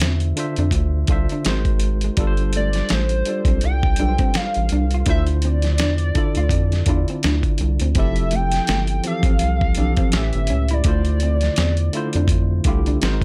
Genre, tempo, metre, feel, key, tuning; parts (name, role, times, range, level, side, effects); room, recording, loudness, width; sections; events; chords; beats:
R&B, neo-soul; 83 BPM; 4/4; swing 57% on 16ths; D dorian; A4 = 440 Hz
vintage hollow-body jazz guitar; second line; 0.0-13.2 s; G#3 to F4; -30 LUFS; equal
tine electric piano; accompaniment; 0.0-13.2 s; A2 to E5; -28 LUFS; equal; overdrive
rubbery square bass; bass; 0.0-13.2 s; F1 to F2; -22 LUFS; equal
dusty soul sampler-style drum kit; drums; 0.0-13.2 s; hi-hat, kick drum, snare drum; -24 LUFS; equal
hollow square lead; melody; 2.6-12.9 s; C5 to G5; -29 LUFS; equal; chorus, phaser
little or no reverb; -19 LUFS; mono
0.0-8.0 A section; 8.0-13.2 A section
0.0 Dm9; 1.5 G#9; 2.2 G9sus4; 5.1 Dm9; 8.0 Fmaj9; 10.1 A7; 10.8 Dm9
0.01 0.73 1.45 | 2.17 2.90 3.62 4.34 | 5.07 5.79 6.51 7.23 | 7.96 8.68 9.40 10.12 | 10.85 11.57 12.29 13.02